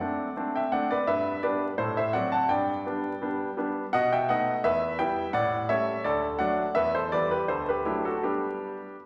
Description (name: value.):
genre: classical-period piano sonatina.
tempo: 84 BPM.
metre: 2/4.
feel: rubato.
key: G major.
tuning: A4 = 441 Hz.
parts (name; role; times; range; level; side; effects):
bright concert grand piano; solo; 0.0-8.9 s; D2 to A5; -28 LUFS; equal; none.
room: wet recital hall reverb, RT60 1.8 s.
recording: vinyl crackle.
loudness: -27 LUFS.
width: mono.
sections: 0.0-9.1 A section.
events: none.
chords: 0.0 D7; 1.1 G; 1.8 F#dim/A; 2.5 G; 3.9 B7; 4.6 Em; 5.3 A7; 6.0 D; 6.7 Em; 7.5 D; 8.2 G.